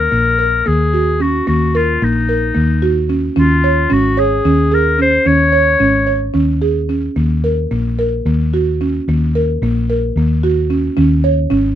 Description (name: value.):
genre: contemporary instrumental, contemporary.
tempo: 221 BPM (eighths).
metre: 7/8.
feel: straight.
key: Eb minor.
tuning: A4 = 439 Hz.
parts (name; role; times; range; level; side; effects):
bright clarinet; melody; 0.0-6.4 s; Eb4 to Db5; -15 LUFS; left 3 dB; none.
buzzing marimba with soft mallets; arpeggios; 0.0-11.7 s; Bb3 to Db5; -16 LUFS; right 2 dB; none.
hollow-body short-scale fingered electric bass; bass; 0.0-11.8 s; Ab1 to Eb2; -16 LUFS; left 1 dB; none.
room: little or no reverb.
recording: close, detailed microphones.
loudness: -12 LUFS.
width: side -11 dB against mid.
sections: 0.0-11.8 A section.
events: none.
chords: 0.0 Ebm7; 3.4 Db5; 7.2 Eb5; 11.0 Db5.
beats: 0.13 0.40 0.67 0.94 1.22 | 1.49 1.76 2.02 2.29 2.56 2.83 3.10 | 3.37 3.64 3.91 4.18 4.45 4.72 4.99 | 5.26 5.53 5.80 6.07 6.35 6.62 6.89 | 7.17 7.44 7.71 7.98 8.26 8.53 8.80 | 9.08 9.35 9.62 9.89 10.16 10.43 10.70 | 10.97 11.24 11.51.